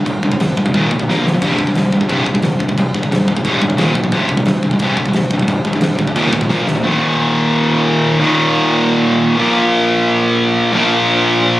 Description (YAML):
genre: heavy metal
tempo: 177 BPM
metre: 4/4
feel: straight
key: unclear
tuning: A4 = 440 Hz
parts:
  - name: distorted electric guitar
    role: riff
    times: 0.0-11.6 s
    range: C2 to Bb3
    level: -13 LUFS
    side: equal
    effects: overdrive
  - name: fuzz fingered electric bass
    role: bass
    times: 0.0-6.8 s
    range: C1 to B1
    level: -19 LUFS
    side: equal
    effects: overdrive
  - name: big rock drum kit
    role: drums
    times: 0.1-6.8 s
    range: crash cymbal, kick drum, snare drum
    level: -19 LUFS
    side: equal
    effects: none
room: studio ambience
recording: recorded on a phone in the room, club reverb, compression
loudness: -12 LUFS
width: side -16 dB against mid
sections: 0.0-6.8 A section; 6.8-11.6 B section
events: drum fill 1.1-1.4, 6.5-6.8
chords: 0.0 C5; 0.7 Eb5; 1.1 Bb5; 1.4 C5; 3.8 Eb5; 4.1 C5; 6.2 Eb5; 6.5 Bb5; 6.8 Eb5; 9.4 Bb5